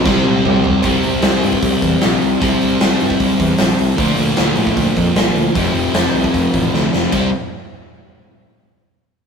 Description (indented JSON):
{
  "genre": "punk rock",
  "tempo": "153 BPM",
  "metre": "4/4",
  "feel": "straight",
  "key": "unclear",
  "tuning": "A4 = 440 Hz",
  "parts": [
    { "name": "sludgy distorted guitar", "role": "riff", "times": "0.0-7.3 s", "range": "F2 to C4", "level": "-16 LUFS", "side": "left 1 dB", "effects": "overdrive" },
    { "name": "fuzz picked electric bass", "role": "bass", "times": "0.0-7.3 s", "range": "F1 to A2", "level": "-19 LUFS", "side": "equal", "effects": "overdrive" },
    { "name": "big rock drum kit", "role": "drums", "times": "0.1-7.2 s", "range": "crash cymbal, hi-hat, kick drum, snare drum, toms", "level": "-18 LUFS", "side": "equal", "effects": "none" }
  ],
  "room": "light reverb",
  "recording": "rough rehearsal-room recording",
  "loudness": "-13 LUFS",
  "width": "side -6 dB against mid",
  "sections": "0.8-7.1 A section; 7.1-8.7 B section",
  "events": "drum fill 0.1-0.8, 6.7-7.1",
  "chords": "0.1 C5; 4.0 Bb/D; 5.6 F5; 7.1 C5"
}